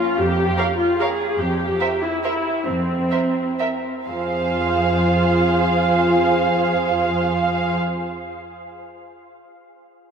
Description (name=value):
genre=classical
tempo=118-161 BPM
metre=3/4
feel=rubato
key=F minor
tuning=A4 = 438 Hz
part: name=muted studio viola section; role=accompaniment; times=0.0-7.8 s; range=C4 to Ab4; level=-22 LUFS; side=equal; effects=none
part: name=muted studio cello section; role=bass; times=0.2-7.8 s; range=F2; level=-24 LUFS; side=right 1 dB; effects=none
part: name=muted studio violin section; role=melody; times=0.6-7.8 s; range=E5 to F5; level=-24 LUFS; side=right 4 dB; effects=none
part: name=muted studio violin section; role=second line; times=0.6-7.8 s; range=Ab4 to Db5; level=-25 LUFS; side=right 2 dB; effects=none
room=wet cathedral reverb, RT60 5.2 s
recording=in a vast, echoing space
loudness=-17 LUFS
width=side -6 dB against mid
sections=0.0-4.1 A section; 4.1-7.0 B section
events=slowing down 0.8-4.1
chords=0.0 N.C.; 1.4 C/F; 4.1 Fm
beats=| 0.19 0.58 0.99 | 1.39 1.80 2.24 | 2.66 3.11 3.60 | 4.08 4.56 5.06 | 5.54 6.02 6.52